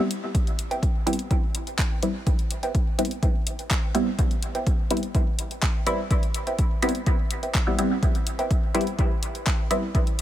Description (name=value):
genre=dub techno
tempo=125 BPM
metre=4/4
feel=straight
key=unclear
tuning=A4 = 440 Hz
part: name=filtered dub chord stab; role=stabs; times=0.0-9.8 s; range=G3 to E4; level=-28 LUFS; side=equal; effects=chorus, phaser, cassette tape, sidechain pumping, dub echo
part: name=deep house drum kit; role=drums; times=0.1-10.2 s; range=handclaps, hi-hat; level=-31 LUFS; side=left 1 dB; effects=none
part: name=electronic kick drum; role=drums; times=0.3-10.0 s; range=none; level=-24 LUFS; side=equal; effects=none
part: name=warbly dusty pluck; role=riff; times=0.7-8.9 s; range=B4 to G5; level=-34 LUFS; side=right 2 dB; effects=chorus, cassette tape, sidechain pumping, dub echo
room=little or no reverb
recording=none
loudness=-22 LUFS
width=side -12 dB against mid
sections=0.0-10.2 A section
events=break 0.0-0.3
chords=0.0 Gadd11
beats=| 0.35 0.83 1.31 1.79 | 2.27 2.75 3.23 3.71 | 4.19 4.67 5.15 5.63 | 6.11 6.59 7.07 7.55 | 8.03 8.51 8.99 9.47 | 9.95